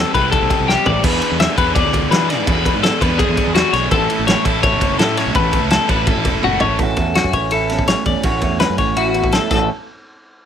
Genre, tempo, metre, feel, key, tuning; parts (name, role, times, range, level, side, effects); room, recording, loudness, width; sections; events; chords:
math rock and midwest emo; 167 BPM; 4/4; straight; A major; A4 = 440 Hz
twelve-string electric guitar; arpeggios; 0.0-9.7 s; F#4 to E5; -18 LUFS; left 6 dB; warbly pitch drift
overdriven electric guitar; riff; 0.0-6.8 s; A2 to A4; -19 LUFS; right 2 dB
growling fingered electric bass; bass; 0.0-9.7 s; E1 to E3; -22 LUFS; equal; overdrive
loose indie drum kit; drums; 0.1-9.6 s; crash cymbal, kick drum, ride cymbal, snare drum, splash cymbal, toms; -19 LUFS; equal
electric guitar through a small old amp; accompaniment; 6.8-9.7 s; E2 to F#4; -21 LUFS; right 10 dB
light reverb; -14 LUFS; side -8 dB against mid
0.0-6.8 A section; 6.8-9.7 B section
drum fill 0.7-1.0, 6.4-6.8, 9.5
0.0 C69; 1.0 E7; 3.9 A69; 6.8 A6; 9.7 N.C.